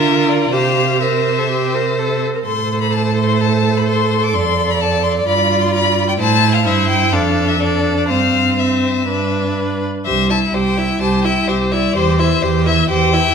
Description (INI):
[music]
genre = quick classical-period movement for string quartet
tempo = 127 BPM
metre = 4/4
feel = rubato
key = C major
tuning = A4 = 436 Hz
[part]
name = rich violin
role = melody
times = 0.0-13.3 s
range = C5 to D6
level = -19 LUFS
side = left 6 dB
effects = none
[part]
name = rich violin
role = second line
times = 0.0-13.3 s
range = A4 to E5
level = -21 LUFS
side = left 2 dB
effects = none
[part]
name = rich viola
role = accompaniment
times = 0.0-13.3 s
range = C4 to Bb4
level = -20 LUFS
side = right 2 dB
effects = none
[part]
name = rich cello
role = bass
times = 0.0-13.3 s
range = C2 to D3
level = -18 LUFS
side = right 4 dB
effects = none
[sound]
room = moderate scoring stage reverb, RT60 1.7 s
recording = minimal, uncompressed stereo recording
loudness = -13 LUFS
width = side -6 dB against mid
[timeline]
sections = 0.0-10.1 A section; 10.1-13.3 B section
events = none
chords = 0.0 Bb/D; 0.5 C; 2.5 Am; 4.3 Dm/F; 5.3 G5; 6.2 Am; 7.1 Dm/F; 8.1 C/G; 9.1 G; 10.1 C; 12.0 C/E